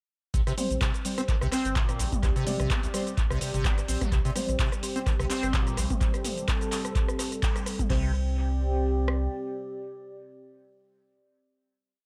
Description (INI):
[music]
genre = acid house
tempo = 127 BPM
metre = 4/4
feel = swing 55% on 16ths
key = unclear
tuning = A4 = 440 Hz
[part]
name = liquid acid bass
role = riff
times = 0.3-8.1 s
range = C2 to C4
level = -35 LUFS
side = equal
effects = tube saturation, lush chorus, sidechain pumping, dub echo
[part]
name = warm sub bass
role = bass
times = 0.3-9.3 s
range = G1 to C2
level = -31 LUFS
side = equal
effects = tube saturation, sidechain pumping
[part]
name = electro analog drum machine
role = drums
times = 0.3-9.2 s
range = kick drum, rim click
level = -30 LUFS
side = equal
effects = none
[part]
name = electro analog drum machine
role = drums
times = 0.3-8.0 s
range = cabasa, crash cymbal, handclaps, hi-hat, rim click, toms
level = -36 LUFS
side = equal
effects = tape echo
[part]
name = warbly tape-like pad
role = texture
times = 0.3-11.1 s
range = C4 to D5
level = -42 LUFS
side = equal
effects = chorus, built-in reverb, sidechain pumping
[part]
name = deep mellow chord stab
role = stabs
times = 0.6-5.0, 7.9-11.0 s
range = G3 to D5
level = -38 LUFS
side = equal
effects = chorus, tape echo
[part]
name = dark analog pad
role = sustained chords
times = 4.7-11.0 s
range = G3 to G5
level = -37 LUFS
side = equal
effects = chorus, sidechain pumping
[sound]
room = little or no reverb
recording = echo-heavy mix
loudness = -27 LUFS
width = mono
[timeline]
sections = 0.3-7.9 drop; 7.9-11.7 final chord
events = drop 0.3-7.9; band accent 7.4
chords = 0.3 C5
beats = | 0.34 0.81 1.28 1.76 | 2.23 2.70 3.17 3.65 | 4.12 4.59 5.07 5.54 | 6.01 6.48 6.96 7.43 | 7.90 8.37 8.84 9.32 | 9.79 10.26 10.73